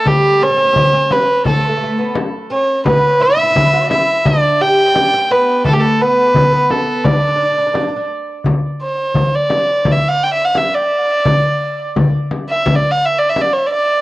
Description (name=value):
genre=Arabic maqam ensemble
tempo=86 BPM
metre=4/4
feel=straight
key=D maqam rast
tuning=A4 = 441 Hz
part: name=warm violin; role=melody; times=0.0-14.0 s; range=G4 to G5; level=-14 LUFS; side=right 1 dB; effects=cassette tape, analog delay
part: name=oud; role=second line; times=0.0-8.0 s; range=G3 to G4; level=-20 LUFS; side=equal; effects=cassette tape
part: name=darbuka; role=percussion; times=0.1-13.5 s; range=none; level=-18 LUFS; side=left 1 dB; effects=none
part: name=frame drum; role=percussion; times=0.1-13.5 s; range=none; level=-20 LUFS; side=left 3 dB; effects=none
room=moderate studio reverb, RT60 0.6 s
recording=home recording on cassette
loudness=-12 LUFS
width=side -18 dB against mid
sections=0.0-8.4 A section; 8.4-14.0 B section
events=none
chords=none